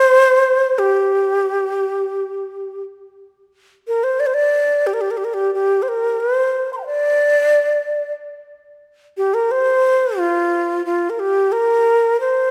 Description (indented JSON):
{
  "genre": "chinese traditional, Chinese chamber ensemble",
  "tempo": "89 BPM",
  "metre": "4/4",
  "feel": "rubato",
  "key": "G yu mode",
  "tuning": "A4 = 439 Hz",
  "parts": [
    { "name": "breathy xiao", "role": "solo", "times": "0.0-12.5 s", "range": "F4 to C6", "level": "-17 LUFS", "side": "equal", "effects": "none" }
  ],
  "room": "moderate concert hall reverb, RT60 2.3 s",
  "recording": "none",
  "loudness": "-18 LUFS",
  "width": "mono",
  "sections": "0.0-3.5 A section; 3.5-12.5 B section",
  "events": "none",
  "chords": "none",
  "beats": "0.10 | 0.77 1.44 2.12 2.82 | 3.52 4.21 4.88 5.55 | 6.21 6.87 7.52 8.18 | 8.84 9.51 10.18 10.86 | 11.53 12.20"
}